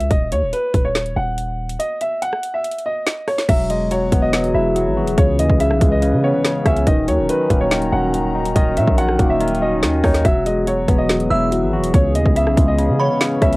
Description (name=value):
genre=hip hop, drill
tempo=142 BPM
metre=4/4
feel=half-time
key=Eb phrygian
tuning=A4 = 440 Hz
part: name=warm upright piano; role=melody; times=0.0-13.6 s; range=Cb5 to Gb5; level=-21 LUFS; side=equal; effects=low-pass filter, cassette tape
part: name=hard-hitting 808-style bass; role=bass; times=0.0-13.6 s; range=Eb1 to Db3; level=-21 LUFS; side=equal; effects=none
part: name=drill drum kit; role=drums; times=0.0-13.6 s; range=crash cymbal, hi-hat, kick drum, rim click, snare drum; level=-18 LUFS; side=equal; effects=cassette tape
part: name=barky tine electric piano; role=accompaniment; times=3.5-13.6 s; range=Db3 to F#4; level=-20 LUFS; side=left 2 dB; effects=phaser, low-pass filter, cassette tape
part: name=dark analog pad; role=sustained chords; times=3.8-13.6 s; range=Eb3 to Bb5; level=-24 LUFS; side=equal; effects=chorus, cassette tape
part: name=delicate synth tine bell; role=second line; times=11.3-13.2 s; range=Cb6 to E6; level=-24 LUFS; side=right 2 dB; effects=chorus, cassette tape, analog delay
room=little or no reverb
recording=home recording on cassette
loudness=-15 LUFS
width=side -21 dB against mid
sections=0.0-3.5 A section; 3.5-13.6 B section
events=break 0.0-3.5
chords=0.1 Ebm; 3.5 Eadd9; 5.2 Dbm7; 6.9 Ebm7; 10.2 Eadd9; 11.9 Dbm7